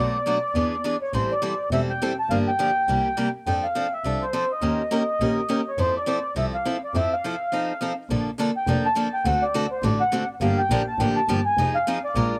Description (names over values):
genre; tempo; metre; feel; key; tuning
acoustic string swing (jazz manouche); 207 BPM; 4/4; swing 59% on 8ths; F major, Bb major from 8.1 s; A4 = 437 Hz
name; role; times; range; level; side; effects
mellow accordion; melody; 0.0-12.4 s; C5 to A5; -27 LUFS; equal; slapback echo
picked steel-string acoustic guitar; accompaniment; 0.0-12.3 s; B2 to Bb4; -29 LUFS; equal; slapback echo
dark double bass; bass; 0.0-12.2 s; E1 to F2; -28 LUFS; equal; none
room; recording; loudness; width
little or no reverb; recorded outdoors, with no room sound; -24 LUFS; mono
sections
0.0-8.1 A section; 8.1-12.4 B section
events
break 7.5-8.1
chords
0.0 Bm7; 0.6 E7; 1.1 Am7; 2.3 Gm7; 2.9 C7; 3.5 F6; 4.6 Eb7; 5.8 Fmaj7; 7.5 F7; 8.1 Bbmaj7; 9.3 D7; 10.4 Gm7; 11.6 Fm7